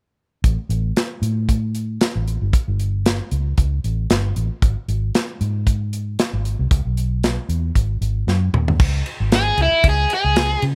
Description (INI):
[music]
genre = straight-eighth soul blues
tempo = 115 BPM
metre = 4/4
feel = swing 56% on 16ths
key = unclear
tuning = A4 = 440 Hz
[part]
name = vintage muted fingered electric bass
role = bass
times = 0.4-10.7 s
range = G1 to C#3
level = -23 LUFS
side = equal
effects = none
[part]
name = tight funk drum kit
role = drums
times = 0.4-10.8 s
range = crash cymbal, hi-hat, kick drum, ride cymbal, snare drum, toms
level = -21 LUFS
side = equal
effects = none
[part]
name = biting overdriven guitar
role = melody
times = 9.4-10.6 s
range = E4 to G#4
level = -20 LUFS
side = equal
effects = none
[sound]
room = little or no reverb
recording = none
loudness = -20 LUFS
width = mono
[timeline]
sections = 0.4-8.8 A section; 8.8-10.8 B section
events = drum fill 8.3-8.8; overdriven electric guitar solo 8.8-10.8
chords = 0.4 A7(no3); 4.6 N.C.; 6.7 C#m7 (rootless); 7.8 G#5; 8.8 C#5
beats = | 0.44 0.96 1.49 2.01 | 2.53 3.05 3.58 4.10 | 4.62 5.14 5.67 6.19 | 6.71 7.23 7.75 8.28 | 8.80 9.32 9.84 10.36